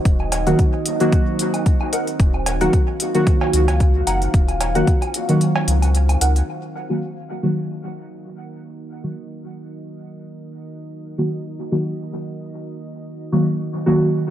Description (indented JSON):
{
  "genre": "dub techno",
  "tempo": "112 BPM",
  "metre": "4/4",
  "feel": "swing 55% on 16ths",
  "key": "Eb dorian",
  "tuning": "A4 = 441 Hz",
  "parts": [
    { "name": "deep dark ambient pad", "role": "sustained chords", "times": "0.0-14.3 s", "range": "Eb4 to F5", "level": "-29 LUFS", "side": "right 1 dB", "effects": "chorus, built-in reverb, sidechain pumping" },
    { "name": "deep mellow chord stab", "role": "stabs", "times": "0.0-14.3 s", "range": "Eb3 to Gb4", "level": "-20 LUFS", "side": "equal", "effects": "chorus, phaser, sidechain pumping, dub echo" },
    { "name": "pure sine sub bass", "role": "bass", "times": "0.1-6.4 s", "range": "Eb1 to Db2", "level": "-19 LUFS", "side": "equal", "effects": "sidechain pumping" },
    { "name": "electronic hi-hat", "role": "drums", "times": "0.1-6.5 s", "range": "none", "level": "-26 LUFS", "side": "left 2 dB", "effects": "low-pass filter on hats" },
    { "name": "electronic kick drum", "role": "drums", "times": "0.1-5.0 s", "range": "none", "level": "-16 LUFS", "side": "equal", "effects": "none" },
    { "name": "woodblock and cowbell", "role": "percussion", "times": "0.2-6.2 s", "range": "none", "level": "-28 LUFS", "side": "right 2 dB", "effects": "overdrive, sidechain pumping on perc, dub echo" },
    { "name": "filtered dub chord stab", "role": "riff", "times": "0.5-6.4 s", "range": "Eb4 to Gb5", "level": "-28 LUFS", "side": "equal", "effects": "phaser, analog chorus, sidechain pumping, dub echo" }
  ],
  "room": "light reverb, digital ambience",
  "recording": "none",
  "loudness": "-16 LUFS",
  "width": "side -11 dB against mid",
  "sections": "0.0-6.5 A section; 6.5-14.3 B section",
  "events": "kick drops out 5.4-6.5; filter sweep on synth stab 6.5-14.3",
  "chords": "0.0 Ebm"
}